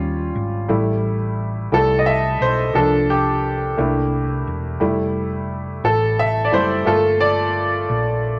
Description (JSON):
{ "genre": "slow gospel", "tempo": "58 BPM (dotted quarters)", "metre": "6/8", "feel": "straight", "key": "F major", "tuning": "A4 = 439 Hz", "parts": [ { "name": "clear grand piano", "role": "accompaniment", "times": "0.0-8.4 s", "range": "F3 to E5", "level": "-20 LUFS", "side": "equal", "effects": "none" }, { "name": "hollow-body short-scale fingered electric bass", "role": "bass", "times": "0.0-8.4 s", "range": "E1 to Eb2", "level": "-26 LUFS", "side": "equal", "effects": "none" } ], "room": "moderate studio reverb, RT60 0.8 s", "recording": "none", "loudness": "-19 LUFS", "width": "mono", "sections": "0.0-8.4 A section", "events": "grand piano solo 0.0-8.4", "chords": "0.0 Eb9; 0.7 Am9; 2.7 C7sus4; 3.8 C13; 4.8 Fmaj7; 6.9 Gm9" }